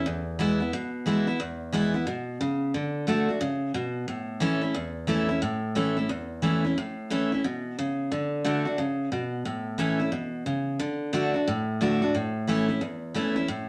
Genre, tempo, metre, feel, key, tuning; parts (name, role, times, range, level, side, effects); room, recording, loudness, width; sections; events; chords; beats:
rock; 179 BPM; 4/4; swing 63% on 8ths; A major; A4 = 440 Hz
picked steel-string acoustic guitar; solo; 0.0-13.7 s; E2 to F#4; -28 LUFS; equal
wet studio reverb, RT60 0.7 s; -28 LUFS; mono
0.0-5.4 A section; 5.4-13.7 B section
0.1 E; 2.7 D; 4.1 A; 8.1 D; 9.5 A; 10.8 D; 12.1 A
| 0.06 0.39 0.73 1.06 | 1.40 1.73 2.07 2.40 | 2.74 3.08 3.41 3.75 | 4.08 4.42 4.75 5.09 | 5.42 5.76 6.09 6.43 | 6.77 7.10 7.44 7.77 | 8.11 8.45 8.78 9.12 | 9.45 9.79 10.13 10.46 | 10.80 11.13 11.47 11.81 | 12.14 12.48 12.81 13.15 | 13.48